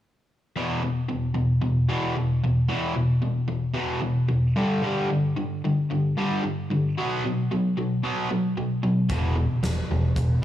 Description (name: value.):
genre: classic rock.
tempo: 112 BPM.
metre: 4/4.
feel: straight.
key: unclear.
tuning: A4 = 440 Hz.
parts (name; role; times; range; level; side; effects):
crunchy overdriven guitar; riff; 0.6-10.4 s; E2 to B3; -22 LUFS; equal; none.
growling picked electric bass; bass; 9.1-10.3 s; E1; -25 LUFS; equal; overdrive.
huge arena drum kit; drums; 9.1-10.3 s; hi-hat, kick drum, snare drum; -29 LUFS; equal; none.
room: moderate echo chamber reverb, RT60 2.0 s, small room ambience.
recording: none.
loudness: -22 LUFS.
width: side -12 dB against mid.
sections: 0.6-10.4 A section.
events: none.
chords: 0.6 E5; 4.6 G5; 7.0 B5; 9.1 E5.